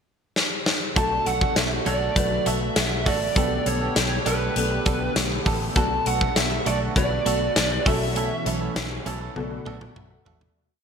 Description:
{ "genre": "1980s-style pop", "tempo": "100 BPM", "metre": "4/4", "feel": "straight", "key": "B minor", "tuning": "A4 = 441 Hz", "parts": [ { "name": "big rock drum kit", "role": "drums", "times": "0.4-10.6 s", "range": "hi-hat, kick drum, snare drum, toms", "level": "-24 LUFS", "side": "left 1 dB", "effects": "gated reverb" }, { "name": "lead guitar through a small cranked amp", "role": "melody", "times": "1.0-8.4 s", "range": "B4 to A5", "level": "-27 LUFS", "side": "right 2 dB", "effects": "overdrive, digital delay" }, { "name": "warm baby grand piano", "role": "accompaniment", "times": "1.0-10.7 s", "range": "B2 to F#5", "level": "-31 LUFS", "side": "left 3 dB", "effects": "ensemble chorus" }, { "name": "phased analog pad", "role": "sustained chords", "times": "1.0-10.6 s", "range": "D3 to G4", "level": "-33 LUFS", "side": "equal", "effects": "phaser, chorus" }, { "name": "direct-recorded clean electric guitar", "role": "riff", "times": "1.0-10.4 s", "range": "G3 to A4", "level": "-31 LUFS", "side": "right 7 dB", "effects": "lush chorus, digital delay" }, { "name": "vintage muted fingered electric bass", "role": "bass", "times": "1.0-10.5 s", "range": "A1 to B1", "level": "-29 LUFS", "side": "equal", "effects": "none" } ], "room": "moderate plate reverb, RT60 2.8 s", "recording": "bright 1980s-style digital production", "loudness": "-21 LUFS", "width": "side -6 dB against mid", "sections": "0.0-1.0 pickup bar; 1.0-10.6 chorus", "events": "drum fill 0.4-1.0, 9.4-10.6; fade-out 8.2-10.6", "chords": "0.0 N.C.; 1.0 D/B; 3.4 Gadd9/B; 5.8 Bm7; 7.9 F#m7/B; 9.4 Bm7", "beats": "0.36 | 0.96 1.56 2.16 2.76 | 3.36 3.96 4.56 5.16 | 5.76 6.36 6.96 7.56 | 8.16 8.76 9.36 9.96" }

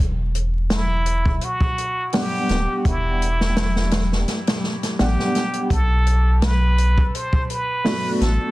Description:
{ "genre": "trip hop", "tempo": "84 BPM", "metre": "4/4", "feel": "swing 54% on 16ths", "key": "E minor", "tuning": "A4 = 440 Hz", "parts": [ { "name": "soft dub sub bass", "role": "bass", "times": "0.0-8.4 s", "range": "D1 to B1", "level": "-19 LUFS", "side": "equal", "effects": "none" }, { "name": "open jazz drum kit", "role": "drums", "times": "0.3-8.4 s", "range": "hi-hat, kick drum, snare drum", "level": "-22 LUFS", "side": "equal", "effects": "vintage 12-bit sampler grit" }, { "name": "trumpet with plunger mute", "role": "melody", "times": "0.7-8.5 s", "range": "E4 to C5", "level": "-25 LUFS", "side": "right 1 dB", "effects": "dub echo" }, { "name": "felt-muted upright piano", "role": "accompaniment", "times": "2.1-8.5 s", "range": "G3 to F#5", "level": "-26 LUFS", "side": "right 1 dB", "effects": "tremolo, low-pass filter, tape echo" } ], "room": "little or no reverb", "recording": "dense, heavily limited modern master, vinyl crackle", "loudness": "-18 LUFS", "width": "side -18 dB against mid", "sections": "0.0-8.5 A section", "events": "none", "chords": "0.0 Em7; 5.7 Bm7", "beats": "0.71 1.42 2.14 | 2.85 3.57 4.28 5.00 | 5.71 6.42 7.14 7.85" }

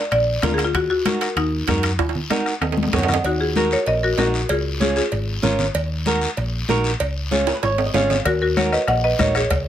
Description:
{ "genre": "latin, cumbia", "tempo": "192 BPM", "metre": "4/4", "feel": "straight", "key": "Eb minor", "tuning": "A4 = 440 Hz", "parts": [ { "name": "buzzing marimba with medium hard mallets", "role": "melody", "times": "0.0-5.6, 8.3-9.7 s", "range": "Eb4 to Gb5", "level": "-21 LUFS", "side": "left 1 dB", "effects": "plate reverb" }, { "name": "flamenco guitar", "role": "accompaniment", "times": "0.0-9.4 s", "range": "Db4 to F5", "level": "-22 LUFS", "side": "right 3 dB", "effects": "none" }, { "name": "hollow-body short-scale picked electric bass", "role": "bass", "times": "0.1-9.7 s", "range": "Ab1 to Gb2", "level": "-24 LUFS", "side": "equal", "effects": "none" }, { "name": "bombo", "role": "percussion", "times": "0.1-3.2, 8.3-9.7 s", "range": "none", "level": "-26 LUFS", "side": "left 2 dB", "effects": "none" }, { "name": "congas", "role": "percussion", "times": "0.1-9.7 s", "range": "none", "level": "-26 LUFS", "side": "left 3 dB", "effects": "none" }, { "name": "guiro", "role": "percussion", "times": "0.1-9.7 s", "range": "none", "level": "-30 LUFS", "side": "left 4 dB", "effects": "none" }, { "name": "timbales and cowbell", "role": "percussion", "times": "0.1-9.7 s", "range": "none", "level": "-26 LUFS", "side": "right 6 dB", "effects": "none" } ], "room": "moderate studio ambience, RT60 0.5 s", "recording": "none", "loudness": "-18 LUFS", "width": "side -11 dB against mid", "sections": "0.0-3.2 A section; 3.2-9.7 B section", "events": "drum fill 2.0-3.2, 7.5-8.3; nylon-string guitar fill 2.8-3.2, 7.3-8.3", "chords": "0.0 Bb; 0.7 Ebm; 4.5 Db; 5.7 Ebm; 7.0 Db; 8.3 Ebm", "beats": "0.11 0.43 | 0.74 1.05 1.37 1.68 | 1.99 2.31 2.62 2.93 | 3.24 3.56 3.87 4.18 | 4.50 4.81 5.12 5.44 | 5.75 6.06 6.38 6.69 | 7.00 7.31 7.63 7.94 | 8.25 8.56 8.88 9.19 | 9.50" }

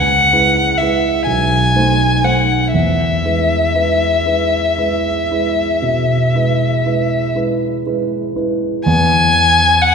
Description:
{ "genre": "classical, romantic duo for violin and grand piano", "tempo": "38-43 BPM (dotted quarters)", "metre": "12/8", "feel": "rubato", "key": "E major", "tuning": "A4 = 441 Hz", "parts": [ { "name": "warm violin", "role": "melody", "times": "0.0-9.9 s", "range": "E5 to G#5", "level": "-14 LUFS", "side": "left 2 dB", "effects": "none" }, { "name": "dark concert grand piano", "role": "accompaniment", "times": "0.0-9.9 s", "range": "B1 to C5", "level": "-16 LUFS", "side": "right 2 dB", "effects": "none" } ], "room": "wet concert hall reverb, RT60 2.0 s", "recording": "minimal, uncompressed stereo recording", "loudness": "-12 LUFS", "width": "side -6 dB against mid", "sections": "0.0-8.9 A section; 8.9-9.9 B section", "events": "none", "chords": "0.0 C#m7; 1.3 B7b9; 2.7 E", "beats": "1.27 | 2.74 4.26 5.82 7.36 | 8.85" }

